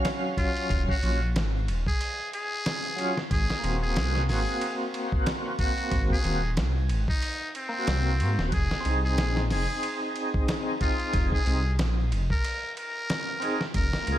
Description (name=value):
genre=trip hop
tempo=92 BPM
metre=4/4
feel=swing 57% on 16ths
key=unclear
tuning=A4 = 440 Hz
part: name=overdriven tonewheel organ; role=accompaniment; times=0.0-14.2 s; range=Gb3 to F5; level=-31 LUFS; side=equal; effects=chorus vibrato, slow rotary speaker, tremolo, tape echo
part: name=dusty soul sampler-style drum kit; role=drums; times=0.0-14.2 s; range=hi-hat, kick drum, ride cymbal, snare drum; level=-29 LUFS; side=equal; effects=none
part: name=trumpet with metal mute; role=melody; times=0.4-14.2 s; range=C4 to Bb4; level=-32 LUFS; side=equal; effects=vintage 12-bit sampler grit, tape echo
part: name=dark detuned saw bass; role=bass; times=0.7-14.2 s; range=Eb1 to Ab2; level=-26 LUFS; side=equal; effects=none
room=digital ambience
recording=none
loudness=-24 LUFS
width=side -12 dB against mid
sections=0.0-14.2 A section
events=none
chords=0.0 Ebm7; 3.3 Ab7; 8.5 Fm7